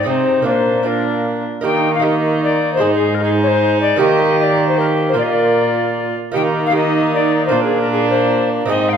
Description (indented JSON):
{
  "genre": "classical, renaissance-style consort dance",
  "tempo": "153 BPM",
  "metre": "3/4",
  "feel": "straight",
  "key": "Eb major",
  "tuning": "A4 = 440 Hz",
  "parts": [
    { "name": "alto recorder", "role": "melody", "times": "0.0-9.0 s", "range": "Ab4 to G5", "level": "-18 LUFS", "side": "left 5 dB", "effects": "none" },
    { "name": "warm viola", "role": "second line", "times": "0.0-9.0 s", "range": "D4 to G4", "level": "-20 LUFS", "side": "right 6 dB", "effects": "none" },
    { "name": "lute", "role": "accompaniment", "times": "0.0-9.0 s", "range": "Ab2 to Bb4", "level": "-21 LUFS", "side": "right 4 dB", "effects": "none" },
    { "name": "mellow bassoon", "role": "accompaniment", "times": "0.0-9.0 s", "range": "Ab3 to C4", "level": "-21 LUFS", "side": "left 2 dB", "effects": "none" },
    { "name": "warm cello", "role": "bass", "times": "0.0-9.0 s", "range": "Ab2 to Eb3", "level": "-21 LUFS", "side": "right 1 dB", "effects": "none" }
  ],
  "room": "moderate recital hall reverb, RT60 1.8 s",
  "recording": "minimal, uncompressed stereo recording",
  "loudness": "-13 LUFS",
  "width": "side -8 dB against mid",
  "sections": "0.0-1.6 A section; 1.6-9.0 A section",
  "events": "none",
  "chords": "0.5 Bb; 1.6 Eb; 2.8 Ab; 4.0 Eb; 5.2 Bb; 6.4 Eb; 7.5 Bb"
}